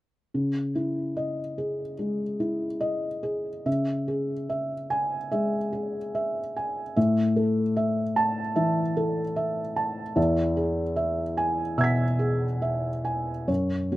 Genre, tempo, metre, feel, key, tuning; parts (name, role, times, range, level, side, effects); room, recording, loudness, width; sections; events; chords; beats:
neoclassical minimalist piano; 73 BPM; 4/4; rubato; C# minor; A4 = 440 Hz
felt-muted upright piano; solo; 0.3-14.0 s; E2 to B6; -24 LUFS; equal
light reverb; recorded outdoors, with no room sound; -24 LUFS; side -16 dB against mid
0.3-3.7 A section; 3.7-14.0 B section
0.3 C#madd9; 3.7 C#m; 7.0 A5; 10.2 E
| 0.34 1.16 1.98 2.81 | 3.67 4.50 5.32 6.14 | 6.96 7.77 8.57 9.38 | 10.17 10.98 11.79 12.63 | 13.49